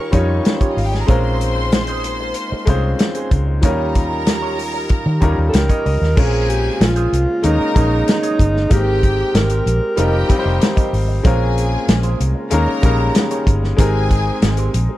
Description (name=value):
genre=lush 1970s-style soul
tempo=94 BPM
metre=4/4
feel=straight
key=Bb dorian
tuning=A4 = 440 Hz
part: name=breathy alto saxophone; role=melody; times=0.0-0.8, 5.5-10.6 s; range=Eb4 to Bb4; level=-20 LUFS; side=right 1 dB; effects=none
part: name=clear studio violin section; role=second line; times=0.0-14.7 s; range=C4 to Db6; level=-27 LUFS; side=equal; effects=none
part: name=clear concert grand piano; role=accompaniment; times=0.0-15.0 s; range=Gb3 to Bb5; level=-22 LUFS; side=left 3 dB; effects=none
part: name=mellow French horn section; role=sustained chords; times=0.0-15.0 s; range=Db3 to Bb4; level=-30 LUFS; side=right 2 dB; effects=none
part: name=electric guitar through a small old amp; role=riff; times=0.1-14.9 s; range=C4 to Eb5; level=-29 LUFS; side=right 7 dB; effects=wah, spring reverb
part: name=vintage muted fingered electric bass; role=bass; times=0.1-14.9 s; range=F1 to Eb3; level=-18 LUFS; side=equal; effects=none
part: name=warm soul drum kit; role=drums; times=0.1-14.9 s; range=crash cymbal, hi-hat, kick drum, snare drum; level=-16 LUFS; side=equal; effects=none
room=small room ambience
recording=none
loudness=-14 LUFS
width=side -15 dB against mid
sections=0.0-6.2 A section; 6.2-15.0 B section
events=grand piano fill 4.9-6.2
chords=0.0 Eb9; 1.1 Bbm9; 3.6 Eb9; 6.2 Bbm9; 7.4 Eb7sus4; 8.7 Abmaj9; 10.0 F9sus4; 11.2 Bbm9; 12.5 Eb7sus4; 13.8 Abmaj9